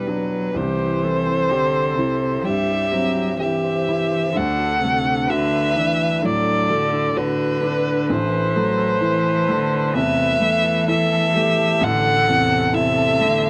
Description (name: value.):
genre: neoclassical piano and strings.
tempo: 64 BPM.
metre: 4/4.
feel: rubato.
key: unclear.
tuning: A4 = 442 Hz.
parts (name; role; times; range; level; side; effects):
muted violin; melody; 0.0-13.5 s; B4 to F#5; -22 LUFS; equal; none.
muted cello; second line; 0.0-13.5 s; C3 to G3; -27 LUFS; equal; none.
warm grand piano; accompaniment; 0.0-13.5 s; A1 to G4; -27 LUFS; equal; none.
concert harp; arpeggios; 0.5-13.5 s; C4 to A5; -32 LUFS; equal; none.
muted viola; accompaniment; 0.6-13.5 s; F#4 to B4; -30 LUFS; equal; none.
room: light reverb.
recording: dry, close 1970s-style studio recording.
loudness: -19 LUFS.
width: mono.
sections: 0.6-13.5 A section.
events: none.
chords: 0.0 Em7; 0.6 C; 4.4 D; 8.1 Am.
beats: | 0.57 1.52 2.46 3.41 | 4.36 5.29 6.23 7.16 | 8.09 9.02 9.95 10.89 | 11.82 12.74.